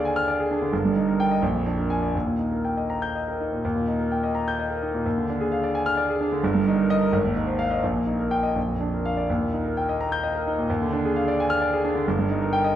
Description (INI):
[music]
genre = classical, virtuoso piano study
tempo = 79-89 BPM (dotted quarters)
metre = 6/8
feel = rubato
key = Eb major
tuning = A4 = 440 Hz
[part]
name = clear concert grand piano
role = solo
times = 0.0-12.8 s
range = G1 to G6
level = -22 LUFS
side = equal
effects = none
[sound]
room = wet stone room reverb, RT60 1.3 s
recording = dark, warm production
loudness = -22 LUFS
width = side -11 dB against mid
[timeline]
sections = 0.0-3.6 A section; 3.6-12.8 A section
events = none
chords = 0.0 Ddim/Eb; 0.7 Eb/G; 1.4 Bb7; 2.1 Eb; 5.0 Ddim/Eb; 6.4 Eb/G; 7.1 Fm7/Ab; 7.8 Eb/Bb; 8.6 Bb; 9.3 Eb; 10.7 Ddim/Eb; 12.1 Eb/G